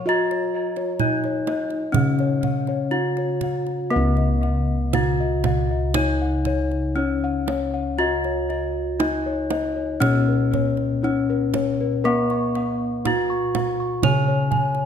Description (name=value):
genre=Javanese gamelan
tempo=60 BPM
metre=4/4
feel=uneven beats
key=unclear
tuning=A4 = 439 Hz
part: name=gamelan-type bronze metallophone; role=melody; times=0.0-14.9 s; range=Cb4-45c to Db5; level=-23 LUFS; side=left 1 dB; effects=tape echo
part: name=gamelan-type bossed gongs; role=bass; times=0.0-14.9 s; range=Db2 to Cb5-45c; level=-24 LUFS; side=left 1 dB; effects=none
part: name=gamelan-type bossed gongs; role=arpeggios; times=0.1-14.8 s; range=Cb5-45c to Db6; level=-28 LUFS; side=left 5 dB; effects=none
part: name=kendang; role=percussion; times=0.3-14.9 s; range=none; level=-27 LUFS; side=right 8 dB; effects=none
room=moderate scoring stage reverb, RT60 1.4 s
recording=none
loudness=-20 LUFS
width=side -8 dB against mid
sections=0.0-3.9 A section; 3.9-14.9 B section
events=none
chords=none